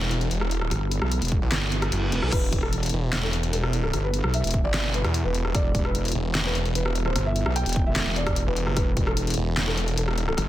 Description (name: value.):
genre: heavy wobble dubstep.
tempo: 149 BPM.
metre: 4/4.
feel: half-time.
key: E minor.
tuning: A4 = 440 Hz.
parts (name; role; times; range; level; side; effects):
evolving wavetable pad; sustained chords; 0.0-10.5 s; B2 to A4; -34 LUFS; right 1 dB; phaser, built-in reverb, sidechain pumping.
snarling distorted saw bass; bass; 0.0-10.4 s; E1 to E2; -26 LUFS; equal; distortion, overdrive.
dubstep drum kit; drums; 0.1-10.5 s; crash cymbal, handclaps, hi-hat, rim click, snare drum; -28 LUFS; left 1 dB; soft clipping on snare.
wobble bass; bass; 0.7-10.5 s; E1 to B1; -26 LUFS; equal; chorus, overdrive.
electronic kick drum; drums; 1.3-9.1 s; none; -25 LUFS; equal; none.
reverse cymbal; sound effects; 1.8-2.3 s; none; -34 LUFS; right 1 dB; none.
felt-muted upright piano; melody; 2.3-10.4 s; A4 to G5; -32 LUFS; equal; tape echo.
room: digital ambience.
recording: dense, heavily limited modern master.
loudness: -22 LUFS.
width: side -14 dB against mid.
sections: 0.0-10.5 A section.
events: reverse cymbal 1.8-2.3.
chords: 0.0 E5.